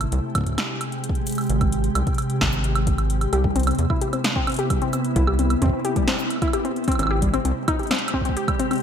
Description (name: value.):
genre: IDM.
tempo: 131 BPM.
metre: 4/4.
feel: straight.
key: unclear.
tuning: A4 = 439 Hz.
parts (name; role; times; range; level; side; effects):
glassy FM pad; sustained chords; 0.0-8.8 s; C3 to G4; -26 LUFS; right 1 dB; ensemble chorus, built-in reverb, vintage 12-bit sampler grit, sidechain pumping.
rubbery square bass; bass; 0.0-7.5 s; Ab1 to E2; -22 LUFS; equal; none.
electro analog drum machine; drums; 0.0-8.8 s; cabasa, hi-hat, snare drum, woodblock; -27 LUFS; right 2 dB; ping-pong delay.
electronic kick drum; drums; 0.3-8.6 s; none; -24 LUFS; equal; none.
warbly dusty pluck; arpeggios; 3.3-8.8 s; G3 to G4; -24 LUFS; left 4 dB; chorus, ping-pong delay.
room: light reverb.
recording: bright 1980s-style digital production.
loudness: -20 LUFS.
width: side -8 dB against mid.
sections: 0.0-8.8 A section.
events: none.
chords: 0.0 Abmaj7; 3.3 Cmaj7; 7.0 Abmaj7.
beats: 0.12 0.58 1.04 | 1.50 1.95 2.41 2.87 | 3.33 3.79 4.24 4.70 | 5.16 5.62 6.08 6.53 | 6.99 7.45 7.91 8.37 | 8.82.